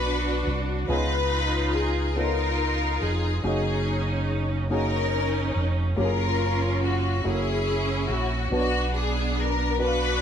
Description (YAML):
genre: gospel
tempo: 47 BPM (dotted quarters)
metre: 6/8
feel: straight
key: F# major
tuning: A4 = 440 Hz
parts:
  - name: clear studio string section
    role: melody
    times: 0.0-10.2 s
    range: B3 to B4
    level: -26 LUFS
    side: left 2 dB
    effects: none
  - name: warm upright piano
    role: accompaniment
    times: 0.0-10.2 s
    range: B2 to E#5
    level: -31 LUFS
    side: equal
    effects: none
  - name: fingered electric bass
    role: bass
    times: 0.0-10.2 s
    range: E#1 to C#2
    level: -26 LUFS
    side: right 1 dB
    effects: none
room: wet studio reverb, RT60 0.5 s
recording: band playing live in one room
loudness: -22 LUFS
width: side -8 dB against mid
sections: 0.0-6.0 A section; 6.0-10.2 A section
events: none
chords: 0.0 Bm; 0.9 C#9; 3.4 F#69; 6.0 F#maj9; 7.3 F#7; 8.5 Bm